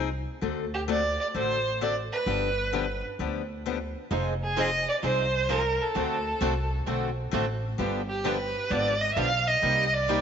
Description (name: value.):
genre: acoustic string swing (jazz manouche).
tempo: 130 BPM.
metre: 4/4.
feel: swing 64% on 8ths.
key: unclear.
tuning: A4 = 442 Hz.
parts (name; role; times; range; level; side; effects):
picked steel-string acoustic guitar; accompaniment; 0.0-10.2 s; C3 to A4; -32 LUFS; left 10 dB; none.
upright bass; bass; 0.0-10.2 s; F1 to D2; -32 LUFS; equal; none.
warm violin; melody; 0.7-10.2 s; G4 to F5; -27 LUFS; right 2 dB; none.
picked swing-style acoustic guitar; accompaniment; 4.1-10.2 s; C3 to C5; -33 LUFS; right 11 dB; none.
room: moderate plate reverb, RT60 3.3 s.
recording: 1960s-style stereo with parts hard left and right, nothing above 7.7 kHz.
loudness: -25 LUFS.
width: side -7 dB against mid.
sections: 0.0-10.2 A section.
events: none.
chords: 0.4 D7; 2.3 G7; 4.1 Fm7; 6.0 D7; 7.8 G7; 9.6 Cm7.